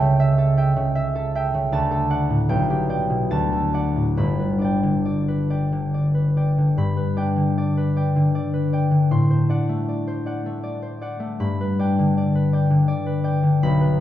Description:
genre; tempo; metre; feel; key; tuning
classical, solo harp piece; 67-83 BPM; 3/4; rubato; G major; A4 = 440 Hz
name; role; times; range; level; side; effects
concert harp; solo; 0.0-14.0 s; G1 to C6; -18 LUFS; equal; none
room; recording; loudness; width
wet recital hall reverb, RT60 1.6 s; heard from further back in the room; -18 LUFS; side -12 dB against mid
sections
0.0-6.8 A section; 6.8-14.0 B section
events
none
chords
0.0 A7/C#; 1.7 D; 2.5 G/B; 3.3 D; 4.2 G; 9.1 D7/A; 11.4 G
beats
0.20 0.96 | 1.73 2.50 3.30 | 4.16 5.05 5.93 | 6.77 7.56 8.34 | 9.10 9.87 10.62 | 11.39 12.15 12.88 | 13.62

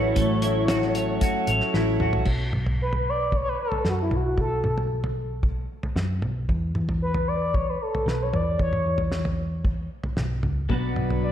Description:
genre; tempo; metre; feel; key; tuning
psychedelic rock; 114 BPM; 4/4; straight; B minor; A4 = 440 Hz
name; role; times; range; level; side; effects
expressive synth lead; melody; 0.0-11.3 s; E4 to D5; -27 LUFS; left 1 dB; chorus, diffuse ambient delay
overdriven combo organ; sustained chords; 0.0-2.2, 10.7-11.3 s; F#3 to B4; -30 LUFS; right 2 dB; none
twelve-string electric guitar; riff; 0.0-2.3, 10.7-11.3 s; B2 to C#5; -25 LUFS; left 1 dB; phaser, double-tracked left and right
hollow-body short-scale picked electric bass; bass; 0.0-11.3 s; A1 to F#2; -27 LUFS; equal; none
cloth-damped thuddy drum kit; drums; 0.2-11.2 s; crash cymbal, hi-hat, kick drum, snare drum, toms; -28 LUFS; equal; none
room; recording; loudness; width
moderate plate reverb, RT60 1.6 s, small room ambience; dreamy mix soaked in reverb; -22 LUFS; side -10 dB against mid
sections
0.0-2.3 A section; 2.3-11.3 B section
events
drum fill 1.7-2.3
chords
0.0 A6; 2.3 B5; 6.5 E5; 10.7 Bm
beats
| 0.17 0.69 1.22 1.75 | 2.27 2.80 3.33 3.85 | 4.38 4.91 5.44 5.96 | 6.49 7.02 7.54 8.07 | 8.60 9.12 9.65 10.18 | 10.70 11.23

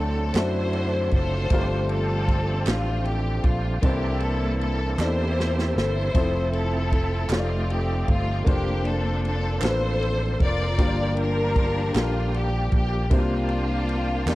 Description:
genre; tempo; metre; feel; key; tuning
slow gospel; 52 BPM (dotted quarters); 6/8; straight; unclear; A4 = 440 Hz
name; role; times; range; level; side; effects
clear studio string section; melody; 0.0-14.3 s; A3 to D5; -28 LUFS; left 2 dB; slapback echo
clear upright piano; accompaniment; 0.0-14.3 s; G2 to D5; -30 LUFS; left 2 dB; none
overdriven tonewheel organ; sustained chords; 0.0-14.3 s; D3 to D5; -32 LUFS; right 3 dB; slow rotary speaker, chorus vibrato
fingered electric bass; bass; 0.0-14.3 s; F1 to F#2; -26 LUFS; equal; none
swinging big-band drum kit; drums; 0.3-14.3 s; kick drum, ride cymbal, snare drum; -24 LUFS; equal; none
group handclap; percussion; 0.4-14.3 s; none; -34 LUFS; right 6 dB; none
room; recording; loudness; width
little or no reverb; dry, close 1970s-style studio recording; -21 LUFS; side -17 dB against mid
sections
0.0-14.3 A section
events
drum fill 5.0-6.2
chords
0.0 D9; 1.5 G9sus4; 3.8 C13; 6.2 Fmaj7; 7.3 F13; 8.5 Bbmaj9/F; 10.8 Gm7; 13.1 C9sus4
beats
0.36 | 1.52 2.67 | 3.83 4.99 | 6.15 7.31 | 8.47 9.63 | 10.79 11.95 | 13.11 14.27

